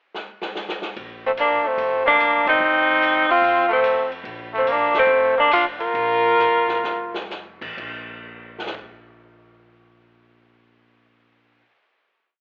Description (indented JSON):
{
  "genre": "jazz, small-group swing and bop",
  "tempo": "124-146 BPM",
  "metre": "4/4",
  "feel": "swing 66% on 8ths",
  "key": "Bb major",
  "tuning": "A4 = 440 Hz",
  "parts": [
    { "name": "open jazz drum kit", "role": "drums", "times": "0.1-8.9 s", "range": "crash cymbal, hi-hat, kick drum, ride cymbal, snare drum", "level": "-34 LUFS", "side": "equal", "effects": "cassette tape" },
    { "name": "upright bass", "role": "bass", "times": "1.0-11.6 s", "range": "F1 to F2", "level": "-46 LUFS", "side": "equal", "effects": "none" },
    { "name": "warm tenor saxophone", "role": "melody", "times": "1.3-7.3 s", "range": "C4 to Bb4", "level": "-20 LUFS", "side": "equal", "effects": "cassette tape" },
    { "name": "brilliant trumpet", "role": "second line", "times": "1.3-7.3 s", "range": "A3 to F4", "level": "-25 LUFS", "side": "equal", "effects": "cassette tape" }
  ],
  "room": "light reverb, studio ambience",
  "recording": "home recording on cassette, telephone sound",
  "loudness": "-19 LUFS",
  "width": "mono",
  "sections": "0.0-1.0 pickup bar; 1.0-7.8 A section; 7.8-11.6 final note",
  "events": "drum fill 0.1-1.0, 6.4-7.3; band accent 2.4, 4.9; slowing down 4.3-7.8",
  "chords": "0.0 N.C.; 1.0 Bbmaj7; 2.6 Cm; 3.4 F; 4.3 Bb5; 7.8 N.C."
}